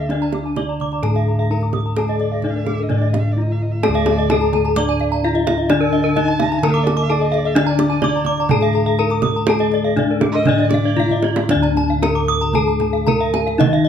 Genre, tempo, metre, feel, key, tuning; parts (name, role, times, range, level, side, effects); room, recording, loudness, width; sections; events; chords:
Balinese gamelan; 115-129 BPM; 4/4; straight; D pelog; A4 = 440 Hz
gamelan-type bronze metallophone; melody; 0.0-13.9 s; D4 to D5; -20 LUFS; left 2 dB
dark erhu; second line; 0.0-11.4 s; D5 to Bb5-41c; -27 LUFS; right 3 dB
gamelan-type bronze metallophone; accompaniment; 0.0-13.9 s; D3 to D4; -26 LUFS; left 3 dB
gamelan-type bronze metallophone; arpeggios; 0.0-13.9 s; Bb4-40c to D6; -24 LUFS; left 4 dB
gamelan-type bossed gongs; bass; 0.0-13.9 s; D2 to A4-45c; -21 LUFS; equal
kendang; percussion; 0.1-13.8 s; -23 LUFS; right 6 dB
gamelan-type bronze metallophone; arpeggios; 0.2-13.9 s; A4-45c to Eb6; -26 LUFS; right 4 dB
light reverb; close, detailed microphones; -15 LUFS; side -8 dB against mid
0.0-11.5 A section; 11.5-13.9 B section
drum fill 3.3-3.8, 11.0-11.5